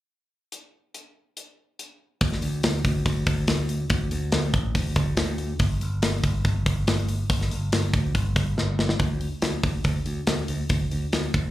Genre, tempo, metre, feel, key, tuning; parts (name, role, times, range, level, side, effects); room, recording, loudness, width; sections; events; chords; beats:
heavy metal; 142 BPM; 4/4; straight; A4 = 440 Hz
tight metal drum kit; drums; 0.5-11.4 s; hi-hat, kick drum, snare drum; -25 LUFS; equal
picked electric bass; bass; 2.2-11.5 s; G1 to D2; -26 LUFS; equal
little or no reverb; live gig heard through the venue's PA, club reverb; -22 LUFS; side -15 dB against mid
0.5-2.2 A section; 2.2-9.0 B section; 9.0-11.5 C section
drum fill 8.6-9.0
| 0.52 0.95 1.37 1.79 | 2.21 2.64 3.06 3.48 | 3.91 4.33 4.75 5.18 | 5.60 6.02 6.45 6.87 | 7.30 7.72 8.14 8.57 | 9.00 9.42 9.85 10.27 | 10.70 11.13